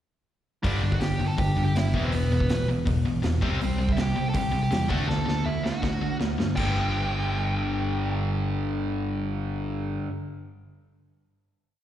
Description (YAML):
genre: punk rock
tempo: 162 BPM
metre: 4/4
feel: straight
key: G major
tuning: A4 = 440 Hz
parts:
  - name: dark smooth lead guitar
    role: melody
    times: 0.6-10.0 s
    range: B3 to A5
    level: -32 LUFS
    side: right 2 dB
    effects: overdrive, slapback echo
  - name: crunchy overdriven guitar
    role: riff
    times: 0.6-10.1 s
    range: E2 to D4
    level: -29 LUFS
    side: left 5 dB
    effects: slapback echo
  - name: distorted electric guitar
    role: riff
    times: 0.6-10.1 s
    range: E2 to D4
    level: -33 LUFS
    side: right 11 dB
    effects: distortion, slapback echo
  - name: overdriven picked electric bass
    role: bass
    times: 0.6-10.0 s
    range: E1 to D3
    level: -28 LUFS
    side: equal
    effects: none
  - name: raw garage drum kit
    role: drums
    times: 0.6-6.7 s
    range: crash cymbal, hi-hat, kick drum, snare drum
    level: -30 LUFS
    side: equal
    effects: none
room: studio ambience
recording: live gig heard through the venue's PA, recital hall reverb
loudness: -23 LUFS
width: side -11 dB against mid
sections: 0.7-6.6 verse; 6.6-9.5 final chord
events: drum fill 5.1-6.6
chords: 0.7 G5; 1.9 E5; 3.4 C5; 4.9 D; 6.6 G5